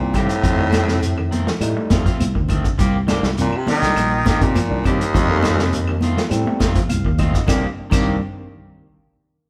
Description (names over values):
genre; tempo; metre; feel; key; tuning
afrobeat; 102 BPM; 4/4; straight; C dorian; A4 = 439 Hz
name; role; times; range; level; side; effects
raspy baritone saxophone; melody; 0.0-6.0 s; Eb2 to Eb3; -23 LUFS; equal; none
overdriven tine electric piano; accompaniment; 0.0-8.2 s; Eb3 to F5; -30 LUFS; equal; none
fingered electric bass; bass; 0.0-8.2 s; Bb1 to C3; -24 LUFS; equal; none
electric guitar at the edge of break-up; arpeggios; 0.1-8.1 s; C3 to A3; -30 LUFS; equal; none
electric guitar at the edge of break-up; stabs; 0.1-8.2 s; Eb3 to G4; -30 LUFS; equal; none
vintage drum kit; drums; 0.1-8.1 s; crash cymbal, hi-hat, kick drum, snare drum; -24 LUFS; equal; none
congas; percussion; 0.1-8.1 s; none; -29 LUFS; equal; none
claves; percussion; 0.2-8.1 s; none; -39 LUFS; equal; none
shekere; percussion; 0.2-8.1 s; none; -32 LUFS; equal; none
room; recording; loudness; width
moderate large studio reverb, RT60 1.4 s; band playing live in one room; -18 LUFS; mono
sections
0.0-7.5 A section; 7.5-9.5 B section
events
baritone saxophone solo 0.0-7.5; tine electric piano fill 6.6-7.5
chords
0.4 F7; 2.8 Cm7; 5.1 F7; 7.5 Cm7